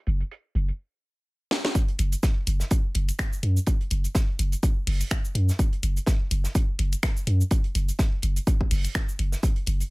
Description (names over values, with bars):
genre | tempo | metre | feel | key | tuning
minimal techno | 125 BPM | 4/4 | swing 56% on 16ths | unclear | A4 = 441 Hz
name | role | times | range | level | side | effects
punchy sub bass | bass | 0.1-9.8 s | F#1 to F#2 | -23 LUFS | equal | sidechain pumping
warm soul drum kit | drums | 0.1-9.9 s | hi-hat, snare drum | -40 LUFS | right 3 dB | high-pass filter on hats, low-pass filter on hats, high-pass filter on snare, low-pass filter on snare, high-pass filter on room, low-pass filter on room
house drum kit | drums | 1.5-9.9 s | finger snaps, hi-hat, shaker, snare drum | -30 LUFS | equal | none
electronic kick drum | drums | 1.8-9.5 s | none | -23 LUFS | equal | none
room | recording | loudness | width
little or no reverb | none | -23 LUFS | side -24 dB against mid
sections
0.0-1.8 A section; 1.8-9.9 B section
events
stop 0.8-1.8; drum fill 1.5; drop 1.8-9.9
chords
none